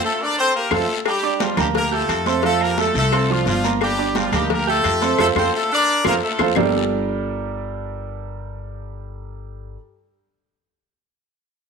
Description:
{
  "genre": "latin, salsa",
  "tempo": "174 BPM",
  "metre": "4/4",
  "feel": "straight",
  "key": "G minor",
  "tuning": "A4 = 441 Hz",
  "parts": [
    { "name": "brilliant horn section", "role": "melody", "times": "0.0-6.5 s", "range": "F3 to D5", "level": "-20 LUFS", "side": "left 2 dB", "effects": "none" },
    { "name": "clear grand piano", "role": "accompaniment", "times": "0.7-9.8 s", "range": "F3 to G6", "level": "-23 LUFS", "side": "right 9 dB", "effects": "none" },
    { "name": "upright bass", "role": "bass", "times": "0.7-9.7 s", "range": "G1 to F2", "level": "-25 LUFS", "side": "left 2 dB", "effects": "none" },
    { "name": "claves", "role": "percussion", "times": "0.7-6.6 s", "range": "none", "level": "-30 LUFS", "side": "left 13 dB", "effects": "none" },
    { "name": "congas", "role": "percussion", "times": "0.7-6.6 s", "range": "none", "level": "-30 LUFS", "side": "left 2 dB", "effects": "none" },
    { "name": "cowbell and bongos", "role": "percussion", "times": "0.7-6.6 s", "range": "none", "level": "-28 LUFS", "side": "left 16 dB", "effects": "none" },
    { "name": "guiro", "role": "percussion", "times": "0.7-6.6 s", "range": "none", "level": "-32 LUFS", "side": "left 15 dB", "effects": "none" },
    { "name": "timbales and agogo bells", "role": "percussion", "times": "0.7-6.6 s", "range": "none", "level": "-31 LUFS", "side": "right 10 dB", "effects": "none" }
  ],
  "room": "moderate echo chamber reverb, RT60 1.4 s, studio reverb",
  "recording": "1960s-style stereo with parts hard left and right",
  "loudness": "-17 LUFS",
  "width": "side -5 dB against mid",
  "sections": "0.0-1.1 A section; 1.1-6.6 B section; 6.6-9.3 C section",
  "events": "band accent 0.0-1.1, 5.2-6.6; drum fill 0.2-1.1, 5.9-6.6",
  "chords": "0.0 F; 1.1 Gmadd9; 2.4 F6; 3.8 Gmadd9; 5.2 F6; 6.6 Gmadd9"
}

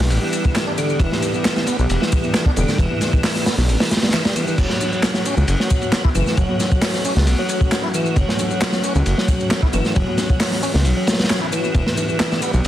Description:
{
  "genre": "breakbeat, breaks",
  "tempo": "134 BPM",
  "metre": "4/4",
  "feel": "straight",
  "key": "unclear",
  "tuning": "A4 = 440 Hz",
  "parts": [
    { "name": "warbly tape-like pad", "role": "sustained chords", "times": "0.0-12.7 s", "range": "E3 to G4", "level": "-26 LUFS", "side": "left 1 dB", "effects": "chorus, built-in reverb, tremolo, sidechain pumping" },
    { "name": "dark detuned saw bass", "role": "bass", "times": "0.0-12.7 s", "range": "E1 to C#2", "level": "-18 LUFS", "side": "equal", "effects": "none" },
    { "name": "crunchy breakbeat drum kit", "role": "drums", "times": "0.0-12.7 s", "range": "crash cymbal, hi-hat, kick drum, ride cymbal, snare drum", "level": "-19 LUFS", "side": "equal", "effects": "none" },
    { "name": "garage drum kit", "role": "drums", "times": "0.0-12.7 s", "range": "handclaps, ride cymbal, shaker", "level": "-28 LUFS", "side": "left 1 dB", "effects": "soft clipping on snare" },
    { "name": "tonewheel organ", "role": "riff", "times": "0.2-12.5 s", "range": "D3 to E4", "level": "-23 LUFS", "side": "equal", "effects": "chorus vibrato, fast rotary speaker, tape echo" },
    { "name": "congas", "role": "percussion", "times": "0.2-12.6 s", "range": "none", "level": "-32 LUFS", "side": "right 3 dB", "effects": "none" }
  ],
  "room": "light reverb, studio ambience",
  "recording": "dense, heavily limited modern master, vinyl crackle",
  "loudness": "-16 LUFS",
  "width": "side -12 dB against mid",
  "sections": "0.0-4.6 A section; 4.6-12.7 A section",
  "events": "drop 0.0-4.6, 4.6-12.7",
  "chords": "0.0 Em7; 4.6 F#m7; 11.7 Em7"
}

